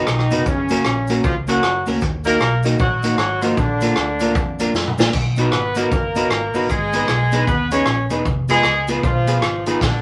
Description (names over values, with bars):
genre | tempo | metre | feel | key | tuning
ska | 154 BPM | 4/4 | swing 62% on 8ths | unclear | A4 = 436 Hz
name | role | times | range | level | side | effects
mellow horn section | melody | 0.0-10.0 s | Db3 to Db5 | -23 LUFS | equal | none
semi-hollow electric guitar | accompaniment | 0.0-9.8 s | Bb3 to B4 | -26 LUFS | equal | none
dark upright piano | stabs | 0.0-9.8 s | Db4 to B4 | -27 LUFS | equal | none
vintage muted fingered electric bass | bass | 0.1-10.0 s | Fb1 to Gb2 | -26 LUFS | equal | none
swinging big-band drum kit | drums | 0.1-9.9 s | hi-hat, kick drum, rim click, snare drum, splash cymbal, toms | -25 LUFS | equal | dub echo
cabasa | percussion | 0.1-9.9 s | none | -47 LUFS | equal | none
room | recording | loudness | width
wet club reverb, RT60 0.7 s | none | -18 LUFS | mono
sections
0.0-10.0 A section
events
drum fill 4.7-5.1, 9.8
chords
0.5 Gb; 2.0 Ebm; 3.6 Bb; 5.1 B; 6.7 Abm; 8.3 Fdim